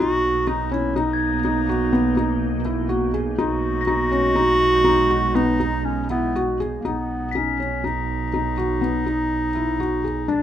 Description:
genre	contemporary instrumental, chamber music in an uneven meter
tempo	123 BPM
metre	7/4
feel	straight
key	B major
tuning	A4 = 440 Hz
part	warm clarinet	second line	0.0-10.4 s	A#3 to F#4	-22 LUFS	equal	none
part	glassy FM pad	sustained chords	0.3-6.8 s	G#3 to D#4	-28 LUFS	right 1 dB	ensemble chorus, built-in reverb
part	felt-muted upright piano	arpeggios	0.0-10.4 s	B3 to G#4	-24 LUFS	left 4 dB	none
part	muted double bass	bass	0.0-10.4 s	A#1 to B1	-27 LUFS	right 4 dB	none
part	glockenspiel with rubber mallets	texture	1.1-8.8 s	G#6 to B6	-32 LUFS	left 6 dB	none
room	little or no reverb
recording	close, detailed microphones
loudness	-19 LUFS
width	side -10 dB against mid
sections	0.0-6.8 A section; 6.8-10.4 B section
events	none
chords	0.0 Bmaj7; 6.8 B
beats	| 0.00 0.48 0.97 1.45 1.94 2.42 2.90 | 3.39 3.88 4.37 4.85 5.35 5.85 6.35 | 6.85 7.35 7.84 8.34 8.83 9.32 9.81 | 10.30

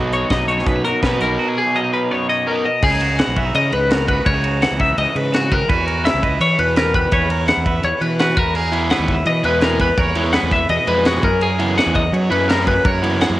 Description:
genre	math rock and midwest emo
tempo	168 BPM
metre	4/4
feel	straight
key	unclear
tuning	A4 = 440 Hz
part	twangy electric guitar	accompaniment	0.0-13.4 s	F#2 to C#5	-23 LUFS	right 6 dB	cassette tape
part	crunchy overdriven guitar	riff	0.0-2.6, 8.7-13.4 s	B2 to E4	-22 LUFS	right 1 dB	cassette tape
part	fuzz fingered electric bass	bass	0.0-13.4 s	B1 to F#3	-21 LUFS	equal	overdrive
part	twelve-string electric guitar	arpeggios	0.1-13.4 s	F#4 to F#5	-18 LUFS	left 2 dB	spring reverb, cassette tape
part	crisp fusion drum kit	drums	0.1-13.3 s	crash cymbal, hi-hat, kick drum, ride cymbal, snare drum	-21 LUFS	equal	cassette tape
room	light reverb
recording	home recording on cassette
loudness	-15 LUFS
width	side -16 dB against mid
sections	0.0-2.8 A section; 2.8-13.4 B section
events	none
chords	0.0 Bmaj7; 2.8 C#m11; 5.7 Esus2; 8.4 Emaj9; 11.2 F#9sus4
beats	0.31 0.67 1.03 | 1.39 1.75 2.11 2.47 | 2.83 3.18 3.54 3.90 | 4.26 4.61 4.97 5.33 | 5.69 6.04 6.40 6.76 | 7.12 7.47 7.83 8.19 | 8.55 8.90 9.26 9.62 | 9.98 10.34 10.69 11.05 | 11.41 11.77 12.13 12.49 | 12.85 13.21

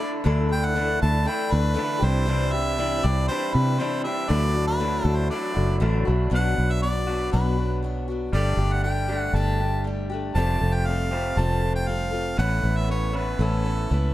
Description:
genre	rock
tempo	119 BPM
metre	4/4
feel	straight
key	D mixolydian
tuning	A4 = 441 Hz
part	bright harmonica	melody	0.0-14.1 s	A4 to A5	-28 LUFS	equal	plate reverb
part	picked steel-string acoustic guitar	accompaniment	0.0-14.1 s	B2 to B4	-30 LUFS	left 6 dB	plate reverb
part	mellow tonewheel organ	sustained chords	0.0-6.3 s	E4 to D5	-38 LUFS	right 2 dB	none
part	electric guitar through a small old amp	riff	0.0-14.1 s	A2 to G4	-30 LUFS	right 2 dB	spring reverb
part	fingered electric bass	bass	0.3-14.1 s	F1 to C3	-23 LUFS	equal	none
room	light reverb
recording	dark, warm production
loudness	-21 LUFS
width	side -14 dB against mid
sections	0.0-6.3 A section; 6.3-14.1 B section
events	none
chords	0.0 Dsus2; 2.0 Cadd9; 4.3 Dadd9; 6.3 Bm; 8.3 Gsus2; 10.4 Fadd9; 12.4 Aadd9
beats	| 0.26 0.77 1.27 1.78 | 2.28 2.79 3.29 3.79 | 4.30 4.80 5.30 5.81 | 6.31 6.82 7.32 7.83 | 8.33 8.84 9.34 9.85 | 10.35 10.86 11.37 11.87 | 12.38 12.88 13.39 13.90

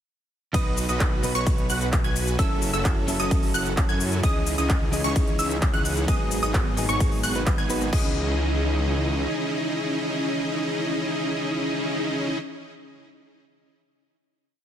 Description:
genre	EDM, festival progressive house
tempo	130 BPM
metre	4/4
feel	straight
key	C# minor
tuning	A4 = 440 Hz
part	direct-recorded clean electric guitar	accompaniment	0.5-12.4 s	G#2 to D#5	-30 LUFS	right 1 dB	sidechain pumping, digital delay
part	wide unison pluck	arpeggios	0.5-12.4 s	C#6 to G#6	-30 LUFS	right 1 dB	sidechain pumping, digital delay
part	dense compressed supersaw	riff	0.5-12.4 s	B3 to G#5	-27 LUFS	equal	sidechain pumping, digital delay
part	detuned saw bass	bass	0.5-9.3 s	F#1 to F#2	-28 LUFS	equal	sidechain pumping
part	big-room dance drum kit	drums	0.5-8.0 s	crash cymbal, handclaps, hi-hat, ride cymbal, shaker	-31 LUFS	left 1 dB	overdrive, studio reverb
part	electronic kick drum	drums	0.5-8.0 s	none	-23 LUFS	equal	overdrive, studio reverb
room	little or no reverb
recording	none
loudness	-22 LUFS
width	side -10 dB against mid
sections	0.5-7.9 drop; 7.9-11.6 final chord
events	drop 0.5-7.9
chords	0.5 B; 2.4 F#m7; 4.2 C#madd9; 6.1 G#m7; 7.9 C#madd9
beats	| 0.54 1.00 1.47 1.93 | 2.39 2.85 3.31 3.77 | 4.24 4.70 5.16 5.62 | 6.08 6.54 7.00 7.46 | 7.93 8.39 8.85 9.31 | 9.77 10.23 10.70 11.16

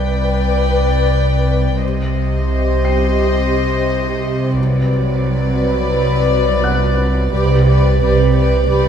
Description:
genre	cinematic, suspense film score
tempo	87 BPM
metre	4/4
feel	straight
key	C hungarian minor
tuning	A4 = 440 Hz
part	warm symphonic violin section	melody	0.0-8.9 s	D5 to G5	-24 LUFS	left 3 dB	none
part	warm symphonic violin section	second line	0.0-8.9 s	B4 to D5	-21 LUFS	left 1 dB	none
part	dark symphonic viola section	accompaniment	0.0-8.9 s	F#3 to B4	-22 LUFS	equal	none
part	rich symphonic double bass section	bass	0.0-8.9 s	C2	-19 LUFS	right 1 dB	none
part	warm symphonic cello section	bass	0.0-8.9 s	C2 to C3	-20 LUFS	right 2 dB	none
part	sub bass with octave	drone	0.0-8.9 s	C2	-20 LUFS	equal	none
part	felt-muted upright piano	texture	0.0-8.9 s	F#5 to C7	-30 LUFS	left 2 dB	none
room	wet scoring stage reverb, RT60 1.6 s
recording	heard from further back in the room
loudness	-13 LUFS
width	side -8 dB against mid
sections	0.0-8.9 A section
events	none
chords	0.0 G/C; 1.8 Cm; 4.6 Bm/C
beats	0.44 1.13 | 1.82 2.51 3.20 3.89 | 4.57 5.26 5.95 6.63 | 7.32 8.01 8.69

